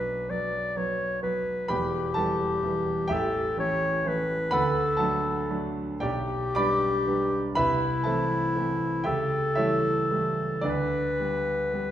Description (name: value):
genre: classical, romantic duo for clarinet and grand piano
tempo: 36-43 BPM (dotted quarters)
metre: 6/8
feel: rubato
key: G major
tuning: A4 = 440 Hz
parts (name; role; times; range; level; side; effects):
- warm clarinet; melody; 0.0-11.9 s; E4 to D5; -27 LUFS; left 2 dB; none
- warm concert grand piano; accompaniment; 0.0-11.9 s; E1 to D6; -27 LUFS; right 2 dB; none
room: wet recital hall reverb, RT60 1.4 s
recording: none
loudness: -24 LUFS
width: side -11 dB against mid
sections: 0.0-11.9 A section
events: none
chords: 0.0 Bm; 1.7 Em; 3.1 A7; 4.5 D; 6.0 G/B; 7.6 Am/C; 9.1 A7/C#; 10.6 G/D